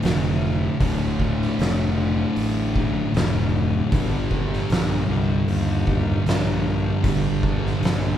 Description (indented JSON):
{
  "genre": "stoner and doom metal",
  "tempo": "77 BPM",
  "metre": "4/4",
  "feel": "straight",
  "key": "D minor",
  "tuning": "A4 = 440 Hz",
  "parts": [
    { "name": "thick fuzz guitar", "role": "riff", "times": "0.0-8.2 s", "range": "D2 to G3", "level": "-25 LUFS", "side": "left 4 dB", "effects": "distortion" },
    { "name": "thick fuzz guitar", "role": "riff", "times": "0.0-8.2 s", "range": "D2 to G3", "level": "-25 LUFS", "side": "right 4 dB", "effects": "distortion" },
    { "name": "fuzz fingered electric bass", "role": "bass", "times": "0.0-8.2 s", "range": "D1 to Eb2", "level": "-25 LUFS", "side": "equal", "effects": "overdrive" },
    { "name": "oversized low-tuned drum kit", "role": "drums", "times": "0.0-8.0 s", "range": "hi-hat, kick drum, snare drum", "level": "-25 LUFS", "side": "equal", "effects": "none" }
  ],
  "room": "moderate large studio reverb, RT60 1.4 s",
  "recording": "band playing live in one room",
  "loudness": "-19 LUFS",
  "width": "side -10 dB against mid",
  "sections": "0.0-8.2 A section",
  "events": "none",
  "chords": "0.0 Dm; 3.9 Gm"
}